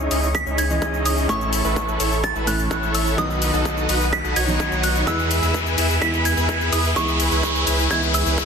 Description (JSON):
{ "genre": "EDM, festival progressive house", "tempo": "127 BPM", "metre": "4/4", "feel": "straight", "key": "E major", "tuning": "A4 = 436 Hz", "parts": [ { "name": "soft synth bell", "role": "melody", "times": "0.0-8.4 s", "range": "C#6 to B6", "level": "-25 LUFS", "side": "right 2 dB", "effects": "chorus, ping-pong delay" }, { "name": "clear baby grand piano", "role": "accompaniment", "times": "0.0-8.4 s", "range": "A2 to D#5", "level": "-27 LUFS", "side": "right 1 dB", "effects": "sidechain pumping" }, { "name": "lush unison pad", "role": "sustained chords", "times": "0.0-8.4 s", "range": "G#4 to E6", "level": "-32 LUFS", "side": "equal", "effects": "chorus, sidechain pumping" }, { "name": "big supersaw lead", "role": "riff", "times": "0.0-8.4 s", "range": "C#4 to D#5", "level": "-24 LUFS", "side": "equal", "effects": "sidechain pumping, low-pass filter" }, { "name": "saturated sub bass", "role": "bass", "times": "0.0-8.4 s", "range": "A1 to E2", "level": "-24 LUFS", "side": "equal", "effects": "sidechain pumping" }, { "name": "riser", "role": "sound effects", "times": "0.0-8.4 s", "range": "none", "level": "-27 LUFS", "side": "equal", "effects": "none" }, { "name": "electronic hi-hat and shaker", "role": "drums", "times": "0.1-8.4 s", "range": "none", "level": "-27 LUFS", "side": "left 6 dB", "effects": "none" }, { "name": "electronic kick drum", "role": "drums", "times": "0.3-8.4 s", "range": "none", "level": "-30 LUFS", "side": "equal", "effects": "high-pass filter on kick, high-pass filter on room" } ], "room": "light reverb", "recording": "dense, heavily limited modern master", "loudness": "-18 LUFS", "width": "side -6 dB against mid", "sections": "0.0-8.4 A section", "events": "build-up 0.0-8.4; riser 0.0-8.4; filter sweep on supersaw synth 0.0-8.4; drum fill 5.1-8.4", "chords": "0.0 C#madd9; 1.3 A; 3.2 B; 5.1 E; 7.0 C#m", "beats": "0.35 0.82 | 1.29 1.76 2.24 2.71 | 3.18 3.65 4.13 4.60 | 5.07 5.54 6.02 6.49 | 6.96 7.43 7.91 8.38" }